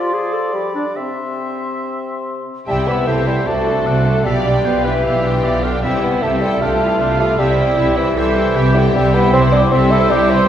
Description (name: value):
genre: classical, dramatic, fast romantic movement for symphony orchestra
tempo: 153 BPM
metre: 4/4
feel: rubato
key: C major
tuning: A4 = 441 Hz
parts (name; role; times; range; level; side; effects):
- clear oboe; second line; 0.0-10.5 s; B4 to G5; -25 LUFS; right 1 dB; none
- mellow wooden flute; second line; 0.0-10.5 s; D5 to E6; -25 LUFS; left 2 dB; none
- warm clarinet; second line; 0.0-10.5 s; C4 to A4; -26 LUFS; left 2 dB; none
- mellow bassoon; accompaniment; 0.0-10.5 s; C3 to E4; -18 LUFS; right 1 dB; none
- warm symphonic violin section; melody; 2.7-10.5 s; E4 to D5; -27 LUFS; left 3 dB; none
- warm symphonic violin section; second line; 2.7-10.5 s; F4 to G5; -28 LUFS; left 1 dB; none
- clear symphonic viola section; accompaniment; 2.7-10.5 s; B3 to C5; -26 LUFS; equal; none
- mellow French horn section; sustained chords; 2.7-10.5 s; D4 to G4; -25 LUFS; left 5 dB; none
- rich symphonic cello section; bass; 2.7-10.4 s; B2 to C3; -21 LUFS; right 2 dB; none
- rich symphonic double bass section; bass; 2.7-10.5 s; B1 to C2; -20 LUFS; right 2 dB; none
room: wet concert hall reverb, RT60 2.1 s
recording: heard from further back in the room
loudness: -14 LUFS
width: side -10 dB against mid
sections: 0.0-2.7 A section; 2.7-10.5 A section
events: none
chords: 0.0 Dm7/F; 0.5 G; 1.0 C; 3.5 D7/C; 4.3 G7/B; 5.8 C; 6.6 G7/C; 7.4 C; 9.0 Cmaj7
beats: 0.13 0.54 | 0.96 1.39 1.82 2.25 | 2.67 3.07 3.46 3.86 | 4.25 4.65 5.04 5.44 | 5.83 6.22 6.61 7.00 | 7.39 7.78 8.17 8.56 | 8.95 9.34 9.72 10.11